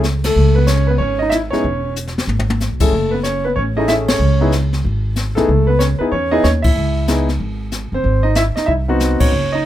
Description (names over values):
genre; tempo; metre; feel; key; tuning
jazz piano trio; 187 BPM; 4/4; swing 63% on 8ths; C# minor; A4 = 439 Hz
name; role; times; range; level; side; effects
warm concert grand piano; melody; 0.0-9.6 s; A3 to E5; -17 LUFS; equal; plate reverb
upright bass; bass; 0.0-9.7 s; E1 to G#2; -17 LUFS; equal; none
jazz brush drum kit; drums; 0.0-9.7 s; brushed snare drum, crash cymbal, hi-hat, kick drum, ride cymbal, snare drum, toms; -21 LUFS; left 1 dB; none
room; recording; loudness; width
light reverb; close, detailed microphones; -14 LUFS; side -12 dB against mid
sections
0.0-9.7 A section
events
band accent 0.2, 4.0, 6.6, 9.2; drum fill 2.0-2.6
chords
0.4 C#m; 2.9 F#m; 4.2 C#m7; 8.0 G#7#9